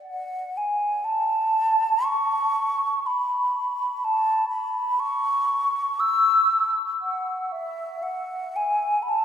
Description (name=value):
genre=classical, free, expressive piece for unaccompanied flute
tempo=57-64 BPM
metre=4/4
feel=rubato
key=A major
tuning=A4 = 441 Hz
part: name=mellow hollow concert flute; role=solo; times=0.1-9.2 s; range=E5 to E6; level=-21 LUFS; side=equal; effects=none
room=wet cathedral reverb, RT60 5.5 s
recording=heard from further back in the room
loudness=-21 LUFS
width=side -8 dB against mid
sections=0.0-9.2 A section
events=none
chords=none